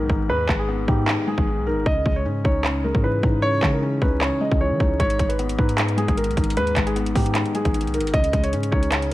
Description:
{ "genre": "hip hop, trap", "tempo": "153 BPM", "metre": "4/4", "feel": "half-time", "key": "G# minor", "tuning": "A4 = 440 Hz", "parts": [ { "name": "dark concert grand piano", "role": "melody", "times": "0.0-9.1 s", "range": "G4 to D#5", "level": "-25 LUFS", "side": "right 1 dB", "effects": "ping-pong delay" }, { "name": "felt-muted upright piano", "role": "accompaniment", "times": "0.0-9.1 s", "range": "G#2 to D#4", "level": "-25 LUFS", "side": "left 2 dB", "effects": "none" }, { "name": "warm 808-style bass", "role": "bass", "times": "0.0-9.1 s", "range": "G#1 to E3", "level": "-25 LUFS", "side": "equal", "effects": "none" }, { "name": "trap drum kit", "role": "drums", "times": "0.1-9.1 s", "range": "handclaps, hi-hat, kick drum", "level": "-23 LUFS", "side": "equal", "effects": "vintage 12-bit sampler grit" } ], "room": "light reverb, digital ambience", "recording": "vinyl crackle", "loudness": "-19 LUFS", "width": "side -16 dB against mid", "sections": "0.0-9.1 A section", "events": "break 0.0-5.0; hi-hats muted 3.4-5.0", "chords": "0.0 G#m; 1.9 C#madd9; 5.0 G#m; 8.1 C#sus2", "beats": "| 0.29 0.69 1.08 1.47 | 1.86 2.25 2.65 3.04 | 3.43 3.82 4.21 4.61 | 5.00 5.39 5.78 6.17 | 6.57 6.96 7.35 7.74 | 8.14 8.53 8.92" }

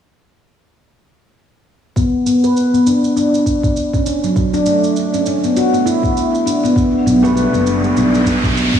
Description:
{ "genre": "organic downtempo", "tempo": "100 BPM", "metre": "4/4", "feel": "swing 58% on 16ths", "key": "B minor", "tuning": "A4 = 440 Hz", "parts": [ { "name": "handpan", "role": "arpeggios", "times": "2.0-8.8 s", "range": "F#3 to B4", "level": "-14 LUFS", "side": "left 1 dB", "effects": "low-pass filter, diffuse ambient delay" }, { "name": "electronic kick drum", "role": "drums", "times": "2.0-8.8 s", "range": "none", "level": "-18 LUFS", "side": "equal", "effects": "none" }, { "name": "shaker", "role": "drums", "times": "2.0-8.8 s", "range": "none", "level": "-30 LUFS", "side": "right 4 dB", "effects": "none" }, { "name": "riser", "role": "sound effects", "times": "7.1-8.8 s", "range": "none", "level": "-22 LUFS", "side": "equal", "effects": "none" }, { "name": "sustaining fretless electric bass", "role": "bass", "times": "7.1-8.8 s", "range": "F#1 to B1", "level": "-17 LUFS", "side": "equal", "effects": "analog chorus, sidechain pumping" }, { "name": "felt-muted upright piano", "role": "accompaniment", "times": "7.2-8.8 s", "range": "G3 to B3", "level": "-18 LUFS", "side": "right 2 dB", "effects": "sidechain pumping, diffuse ambient delay" } ], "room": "wet lush hall reverb, RT60 2.6 s", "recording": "dreamy mix soaked in reverb, studio reverb", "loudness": "-12 LUFS", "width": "side -9 dB against mid", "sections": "2.0-8.8 A section", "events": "filter sweep on handpan 2.0-8.8; riser 7.1-8.8", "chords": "2.0 Bm; 6.8 Gadd9", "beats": "| 1.96 2.56 3.16 3.76 | 4.36 4.96 5.56 6.16 | 6.76 7.36 7.96 8.56" }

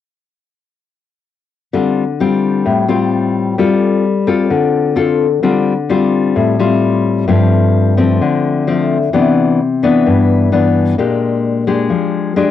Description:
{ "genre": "bossa nova", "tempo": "130 BPM", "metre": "4/4", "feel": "straight", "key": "C major", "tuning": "A4 = 440 Hz", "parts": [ { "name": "nylon-string guitar", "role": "accompaniment", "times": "1.7-12.5 s", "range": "G2 to A4", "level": "-11 LUFS", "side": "left 3 dB", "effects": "cassette tape" } ], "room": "moderate small room reverb, RT60 0.5 s", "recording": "home recording on cassette", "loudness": "-11 LUFS", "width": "side -11 dB against mid", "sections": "1.7-9.1 A section; 9.1-12.5 B section", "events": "none", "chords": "1.7 Dm7; 3.6 G9sus4; 5.4 Dm7; 7.3 G9sus4; 9.1 Cmaj9; 11.0 Bb6", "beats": "| 1.73 2.19 2.65 3.11 | 3.58 4.04 4.50 4.96 | 5.42 5.89 6.35 6.81 | 7.28 7.74 8.20 8.66 | 9.12 9.59 10.05 10.51 | 10.97 11.44 11.90 12.36" }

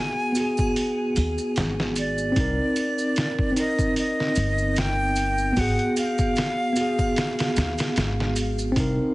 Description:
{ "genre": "trip hop", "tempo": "75 BPM", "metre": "4/4", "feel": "swing 56% on 16ths", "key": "unclear", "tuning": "A4 = 440 Hz", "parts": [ { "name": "breathy bright jazz flute", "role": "melody", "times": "0.0-8.3 s", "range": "D5 to Ab5", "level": "-28 LUFS", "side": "equal", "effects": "tape echo" }, { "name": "bell-like tine electric piano", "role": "accompaniment", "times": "0.0-9.1 s", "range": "Cb4 to Bb4", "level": "-25 LUFS", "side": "equal", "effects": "harmonic tremolo, low-pass filter" }, { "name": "trip hop sampler-style drum kit", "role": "drums", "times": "0.4-9.0 s", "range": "hi-hat, kick drum, snare drum", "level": "-27 LUFS", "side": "equal", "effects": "none" }, { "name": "maracas and triangle", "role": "percussion", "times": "0.4-8.9 s", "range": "none", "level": "-38 LUFS", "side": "right 3 dB", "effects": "none" }, { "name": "upright bass", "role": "bass", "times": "1.2-9.0 s", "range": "G1 to Eb2", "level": "-26 LUFS", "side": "equal", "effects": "tube saturation" } ], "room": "light reverb, small room ambience", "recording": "heavily compressed radio sound, multiband compression, vinyl crackle, nothing above 11.0 kHz", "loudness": "-21 LUFS", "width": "side -19 dB against mid", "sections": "0.0-9.1 A section", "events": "none", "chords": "0.0 Abm7; 2.4 Cm7; 5.6 Abm7", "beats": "0.76 1.56 | 2.36 3.16 3.96 4.76 | 5.56 6.36 7.16 7.96 | 8.76" }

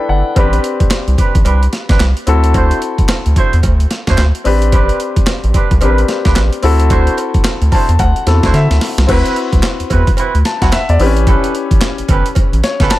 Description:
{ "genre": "R&B, new jack swing", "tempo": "110 BPM", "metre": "4/4", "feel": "swing 62% on 16ths", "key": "unclear", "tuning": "A4 = 440 Hz", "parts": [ { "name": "clear baby grand piano", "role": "accompaniment", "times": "0.0-13.0 s", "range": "C4 to A5", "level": "-18 LUFS", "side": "left 4 dB", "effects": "none" }, { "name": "round analog bass", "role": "bass", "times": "0.1-13.0 s", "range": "E1 to D3", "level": "-12 LUFS", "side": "equal", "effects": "none" }, { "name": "mellow horn section", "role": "stabs", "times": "0.4-12.9 s", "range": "C4 to C5", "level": "-21 LUFS", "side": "right 6 dB", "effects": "digital delay" }, { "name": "breakbeat sampler-style drum kit", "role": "drums", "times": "0.4-13.0 s", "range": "crash cymbal, handclaps, hi-hat, kick drum, snare drum", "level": "-14 LUFS", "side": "equal", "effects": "none" }, { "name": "cowbell", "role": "percussion", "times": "0.4-13.0 s", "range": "none", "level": "-30 LUFS", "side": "right 8 dB", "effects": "none" } ], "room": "small room ambience", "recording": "none", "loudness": "-10 LUFS", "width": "side -16 dB against mid", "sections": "0.0-9.1 A section; 9.1-13.0 B section", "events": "grand piano fill 0.0-0.4, 7.5-9.1, 12.4-13.0; drum fill 8.5-9.1", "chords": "0.4 Am11; 2.3 D9; 4.5 Am11; 6.6 D9; 9.1 D13; 11.0 A9", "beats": "| 0.36 0.91 1.45 2.00 | 2.54 3.09 3.63 4.18 | 4.72 5.27 5.81 6.36 | 6.91 7.45 8.00 8.54 | 9.09 9.63 10.18 10.72 | 11.27 11.81 12.36 12.90" }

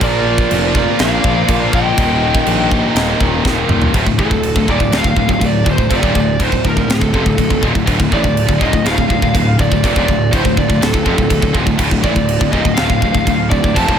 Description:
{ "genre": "heavy metal", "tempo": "122 BPM", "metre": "4/4", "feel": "straight", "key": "D phrygian", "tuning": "A4 = 438 Hz", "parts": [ { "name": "lead guitar through a small cranked amp", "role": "melody", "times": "0.0-14.0 s", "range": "A4 to A5", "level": "-19 LUFS", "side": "right 2 dB", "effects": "overdrive" }, { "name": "high-gain lead guitar", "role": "second line", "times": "0.0-3.2 s", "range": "Bb4 to Eb5", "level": "-25 LUFS", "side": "right 4 dB", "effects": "distortion" }, { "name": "warm studio string section", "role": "sustained chords", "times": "0.0-14.0 s", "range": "D3 to D5", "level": "-30 LUFS", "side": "equal", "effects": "none" }, { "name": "distorted electric guitar", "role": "riff", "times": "0.0-14.0 s", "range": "D2 to Bb3", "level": "-23 LUFS", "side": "equal", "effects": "none" }, { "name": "heavy high-gain guitar", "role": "riff", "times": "0.0-14.0 s", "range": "D2 to Bb3", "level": "-21 LUFS", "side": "right 10 dB", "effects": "distortion" }, { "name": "tight distorted guitar", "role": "riff", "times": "0.0-14.0 s", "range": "D2 to Bb3", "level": "-20 LUFS", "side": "left 10 dB", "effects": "distortion" }, { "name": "fuzz picked electric bass", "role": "bass", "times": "0.0-14.0 s", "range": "D1 to Bb1", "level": "-19 LUFS", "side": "equal", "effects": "overdrive" }, { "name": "tight metal drum kit", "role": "drums", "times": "0.0-14.0 s", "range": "crash cymbal, kick drum, snare drum, toms", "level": "-17 LUFS", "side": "equal", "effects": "none" } ], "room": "little or no reverb", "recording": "none", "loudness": "-12 LUFS", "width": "side -8 dB against mid", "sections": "0.0-3.9 A section; 3.9-14.0 B section", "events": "drum fill 3.5-3.9", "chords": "0.0 Bb; 2.0 Eb; 3.9 Dm", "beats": "| 0.02 0.51 1.00 1.49 | 1.99 2.48 2.97 3.46 | 3.95 4.44 4.93 5.42 | 5.91 6.40 6.89 7.38 | 7.88 8.37 8.86 9.35 | 9.84 10.33 10.82 11.31 | 11.80 12.29 12.78 13.27 | 13.76" }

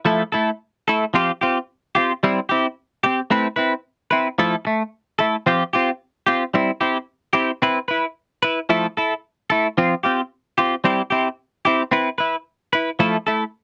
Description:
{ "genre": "highlife", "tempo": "111 BPM", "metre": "4/4", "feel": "straight", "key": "C major", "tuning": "A4 = 437 Hz", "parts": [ { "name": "clean electric guitar", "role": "solo", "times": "0.0-13.4 s", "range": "F3 to B4", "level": "-20 LUFS", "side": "equal", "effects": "analog chorus" } ], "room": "light reverb", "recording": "dry, close 1970s-style studio recording", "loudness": "-21 LUFS", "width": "mono", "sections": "0.0-10.8 A section; 10.8-13.6 B section", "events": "none", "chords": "0.1 Fmaj7; 1.1 Fsus2; 2.2 C; 3.3 Amadd9; 4.4 Fmaj7; 5.5 Fsus2; 6.5 C; 7.6 Cmaj7; 8.7 Fmaj7; 9.8 Fsus2; 10.8 C; 11.9 Cmaj7; 13.0 Fmaj7", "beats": "| 0.06 0.60 1.14 1.68 | 2.22 2.76 3.30 3.84 | 4.38 4.92 5.46 6.00 | 6.54 7.08 7.61 8.15 | 8.69 9.23 9.77 10.31 | 10.85 11.39 11.93 12.46 | 13.00" }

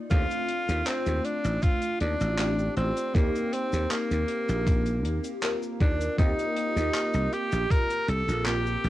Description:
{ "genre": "vaporwave", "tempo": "79 BPM", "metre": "4/4", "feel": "straight", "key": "unclear", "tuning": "A4 = 440 Hz", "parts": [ { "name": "FM electric piano with soft pad layer", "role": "accompaniment", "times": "0.0-8.9 s", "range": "A3 to Bb4", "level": "-32 LUFS", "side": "equal", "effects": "phaser, wide subtle chorus, cassette tape" }, { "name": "clear tenor saxophone", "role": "melody", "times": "0.1-8.9 s", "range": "Bb3 to Bb4", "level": "-29 LUFS", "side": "equal", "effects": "cassette tape, tape echo" }, { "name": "dry thumbed slap bass", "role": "bass", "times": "0.1-8.9 s", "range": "A1 to Eb2", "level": "-28 LUFS", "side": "equal", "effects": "transformer saturation" }, { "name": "damped 70s drum kit", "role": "drums", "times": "0.1-8.9 s", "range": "cabasa, handclaps, hi-hat", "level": "-35 LUFS", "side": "equal", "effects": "studio reverb, cassette tape" }, { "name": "electronic kick drum", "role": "drums", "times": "0.1-7.9 s", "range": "none", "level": "-23 LUFS", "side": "equal", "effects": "studio reverb, cassette tape" } ], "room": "light reverb", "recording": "home recording on cassette", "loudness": "-24 LUFS", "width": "side -15 dB against mid", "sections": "0.1-8.9 A section", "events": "none", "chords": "0.1 Dm7; 3.1 F9sus4", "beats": "| 0.11 0.87 1.63 2.39 | 3.15 3.91 4.67 5.43 | 6.19 6.95 7.71 8.46" }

